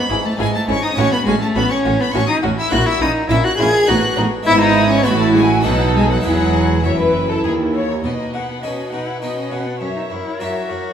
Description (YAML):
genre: classical, baroque-style concerto movement with solo episodes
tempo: 102 BPM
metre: 3/4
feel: straight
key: E major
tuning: A4 = 440 Hz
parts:
  - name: rich chamber violin section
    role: melody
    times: 0.0-10.9 s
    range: E5 to G#6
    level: -24 LUFS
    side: left 1 dB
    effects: none
  - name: warm cello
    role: melody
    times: 0.0-10.9 s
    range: E3 to G#4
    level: -19 LUFS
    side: left 1 dB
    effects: none
  - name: harpsichord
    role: accompaniment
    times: 0.0-10.9 s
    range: D#2 to C#5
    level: -26 LUFS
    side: left 1 dB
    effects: none
  - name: dark symphonic violin section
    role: second line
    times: 0.1-10.9 s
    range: D#4 to F#5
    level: -23 LUFS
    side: left 2 dB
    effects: none
  - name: warm chamber viola section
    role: accompaniment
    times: 0.1-10.9 s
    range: B3 to C#5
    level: -23 LUFS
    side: right 2 dB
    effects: none
  - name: rich chamber double bass section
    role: bass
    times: 0.1-8.0 s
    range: E1 to D#2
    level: -23 LUFS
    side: right 3 dB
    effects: none
  - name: warm chamber cello section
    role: bass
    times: 0.1-10.8 s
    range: D#2 to B2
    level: -23 LUFS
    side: right 3 dB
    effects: none
room: wet recital hall reverb, RT60 1.5 s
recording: minimal, uncompressed stereo recording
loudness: -14 LUFS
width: side -8 dB against mid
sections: 0.0-8.0 A section; 8.0-10.9 B section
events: none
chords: 0.0 E/G#; 1.0 F#m/A; 2.7 F#7/A#; 3.9 B7/A; 4.5 E/G#; 5.1 F#m7/A; 5.7 B7; 6.2 E; 8.0 B; 9.8 F#7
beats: 0.39 | 0.97 1.55 2.14 | 2.72 3.30 3.88 | 4.47 5.06 5.65 | 6.25 6.85 7.45 | 8.05 8.64 9.23 | 9.82 10.40